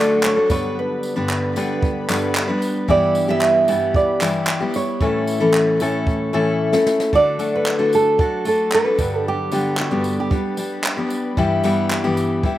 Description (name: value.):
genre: acoustic pop.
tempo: 113 BPM.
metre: 4/4.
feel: straight.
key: D major.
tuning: A4 = 439 Hz.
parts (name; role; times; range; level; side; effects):
nylon-string guitar; melody; 0.0-11.1 s; F#4 to E5; -20 LUFS; right 3 dB; none.
picked steel-string acoustic guitar; accompaniment; 0.0-12.6 s; G2 to B4; -19 LUFS; left 2 dB; slapback echo.
ethereal airy pad; sustained chords; 0.1-12.6 s; F#3 to C#5; -30 LUFS; right 4 dB; ensemble chorus, built-in reverb.
jazz brush drum kit; drums; 0.2-12.6 s; handclaps, kick drum, snare drum, tambourine; -24 LUFS; right 1 dB; none.
room: little or no reverb.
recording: recorded outdoors, with no room sound.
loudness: -16 LUFS.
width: side -14 dB against mid.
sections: 0.0-7.1 A section; 7.1-12.6 B section.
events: drum fill 6.1-7.1.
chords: 0.5 G; 2.9 Em/G; 5.0 A; 7.1 D; 9.0 G; 11.4 Em/G.